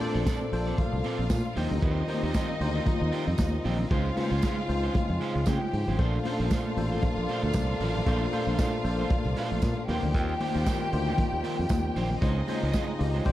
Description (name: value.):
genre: disco.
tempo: 115 BPM.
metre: 4/4.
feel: swing 56% on 16ths.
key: Bb major.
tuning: A4 = 439 Hz.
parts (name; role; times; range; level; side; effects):
rich studio violin section; second line; 0.0-13.3 s; D4 to G5; -34 LUFS; left 1 dB; none.
electric guitar at the edge of break-up; accompaniment; 0.0-13.3 s; Ab3 to D5; -36 LUFS; right 6 dB; spring reverb.
mellow tine electric piano; accompaniment; 0.0-13.3 s; Bb2 to D5; -33 LUFS; left 4 dB; medium stereo tremolo.
mellow French horn section; sustained chords; 0.0-13.3 s; C3 to A4; -35 LUFS; equal; none.
vintage drum kit; drums; 0.0-13.3 s; hi-hat, kick drum, snare drum; -30 LUFS; equal; none.
congas; percussion; 0.0-13.3 s; none; -38 LUFS; left 4 dB; none.
fingered electric bass; bass; 0.2-13.3 s; Ab1 to Db3; -29 LUFS; equal; none.
tambourine; percussion; 0.3-12.9 s; none; -48 LUFS; right 12 dB; none.
room: light reverb, small room ambience.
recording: dark, warm production.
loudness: -25 LUFS.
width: side -14 dB against mid.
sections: 0.0-13.3 A section.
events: none.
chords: 0.0 Bbmaj9; 1.6 Eb69; 3.9 Dbmaj7; 6.0 Bbmaj9; 9.9 Eb69; 12.2 Dbmaj7.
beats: 0.26 0.78 1.30 | 1.82 2.34 2.86 3.38 | 3.90 4.42 4.94 5.46 | 5.98 6.50 7.02 7.54 | 8.06 8.58 9.10 9.62 | 10.14 10.66 11.18 11.70 | 12.22 12.74 13.26.